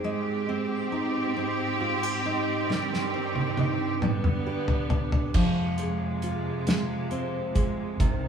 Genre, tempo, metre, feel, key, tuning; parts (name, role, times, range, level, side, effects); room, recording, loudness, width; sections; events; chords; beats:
six-eight pop ballad; 45 BPM (dotted quarters); 6/8; straight; A4 = 440 Hz
fingerpicked steel-string acoustic guitar; accompaniment; 0.0-8.3 s; C3 to Ab4; -29 LUFS; equal
clear studio string section; sustained chords; 0.0-8.3 s; C2 to G4; -29 LUFS; right 3 dB
damped 70s drum kit; drums; 2.7-8.2 s; crash cymbal, hi-hat, kick drum, snare drum, toms; -27 LUFS; equal
moderate stone room reverb, RT60 1.0 s; band playing live in one room, small room reverb; -25 LUFS; side -7 dB against mid
0.0-5.3 A section; 5.3-8.3 B section
drum fill 2.7-5.3
0.0 Abmaj7; 2.7 Cm/G; 4.0 G; 5.3 Fm
| 0.04 1.37 | 2.69 4.02 | 5.35 6.67 | 8.00